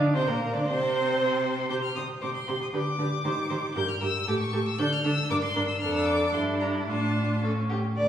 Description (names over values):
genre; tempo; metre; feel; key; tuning
quick classical-period movement for string quartet; 116 BPM; 2/4; straight; D minor from 3.8 s; A4 = 439 Hz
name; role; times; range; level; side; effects
warm viola; accompaniment; 0.0-8.1 s; A3 to G4; -29 LUFS; right 2 dB; none
clear cello; bass; 0.0-8.1 s; D2 to Eb3; -29 LUFS; right 1 dB; none
rich violin; melody; 0.1-8.1 s; D4 to G6; -32 LUFS; left 3 dB; none
rich violin; second line; 0.1-8.1 s; E4 to D5; -32 LUFS; left 1 dB; none
room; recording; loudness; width
wet recital hall reverb, RT60 1.5 s; recorded in a church or concert hall, small room ambience; -24 LUFS; side -10 dB against mid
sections
0.0-8.0 A section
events
none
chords
0.0 Bb; 0.7 N.C.; 1.7 C5; 2.7 G5; 3.2 Cm (rootless); 3.8 N.C.; 4.3 A7; 4.8 D5; 5.3 Gm; 5.8 Dm/F; 6.3 Em7/G; 6.9 Dm/A; 7.4 A